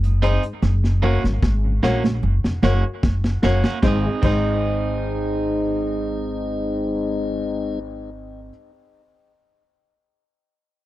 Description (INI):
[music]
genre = roots reggae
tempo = 75 BPM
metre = 4/4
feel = straight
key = Ab mixolydian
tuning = A4 = 435 Hz
[part]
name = mellow tonewheel organ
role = accompaniment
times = 0.0-7.8 s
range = Gb2 to Eb4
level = -27 LUFS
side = left 3 dB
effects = slow rotary speaker, dub echo
[part]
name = upright bass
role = bass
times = 0.0-8.5 s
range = F1 to Bb1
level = -22 LUFS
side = equal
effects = none
[part]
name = crunchy breakbeat drum kit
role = drums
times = 0.0-4.5 s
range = crash cymbal, hi-hat, kick drum, snare drum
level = -21 LUFS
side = equal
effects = none
[part]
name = electric guitar at the edge of break-up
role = accompaniment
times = 0.2-8.6 s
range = Bb3 to Ab4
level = -28 LUFS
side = right 6 dB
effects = dub echo
[part]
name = dark upright piano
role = stabs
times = 0.2-8.5 s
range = Eb4 to Db5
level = -27 LUFS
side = left 4 dB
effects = none
[part]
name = congas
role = percussion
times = 0.6-4.5 s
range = none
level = -28 LUFS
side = right 6 dB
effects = none
[sound]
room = little or no reverb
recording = dry, close 1970s-style studio recording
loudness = -18 LUFS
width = side -15 dB against mid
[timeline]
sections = 0.0-3.8 A section; 3.8-7.0 B section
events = drum fill 0.6-3.8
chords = 0.0 Ab; 0.6 Gb; 3.8 Ab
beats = | 0.62 1.43 2.23 3.03 | 3.83 4.63 5.43 6.23